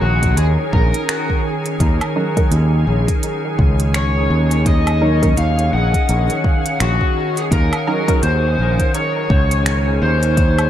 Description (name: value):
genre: ambient dub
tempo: 84 BPM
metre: 4/4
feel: swing 59% on 16ths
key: Eb dorian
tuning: A4 = 440 Hz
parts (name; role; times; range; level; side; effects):
- overdriven slide guitar; melody; 0.0-10.7 s; Gb4 to Gb5; -21 LUFS; left 1 dB; dub echo
- soft additive organ-like pad; sustained chords; 0.0-10.7 s; Eb3 to Ab4; -22 LUFS; equal; ensemble chorus, built-in reverb
- growling fingered electric bass; bass; 0.0-10.7 s; Bb1 to Eb2; -16 LUFS; equal; overdrive
- electronic kick drum; drums; 0.2-10.5 s; none; -17 LUFS; equal; overdrive, studio reverb
- organic electronic drum kit; drums; 0.2-10.7 s; finger snaps, hi-hat, woodblock; -25 LUFS; right 2 dB; studio reverb
- filtered dub chord stab; stabs; 2.2-8.2 s; Gb3 to Bb4; -26 LUFS; right 2 dB; chorus, dub echo
room: light reverb, digital ambience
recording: none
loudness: -14 LUFS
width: side -11 dB against mid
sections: 0.0-10.7 A section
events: none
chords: 0.0 Eb7(no3)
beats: 0.37 1.09 | 1.80 2.52 3.23 3.94 | 4.66 5.37 6.09 6.80 | 7.52 8.23 8.94 9.66 | 10.37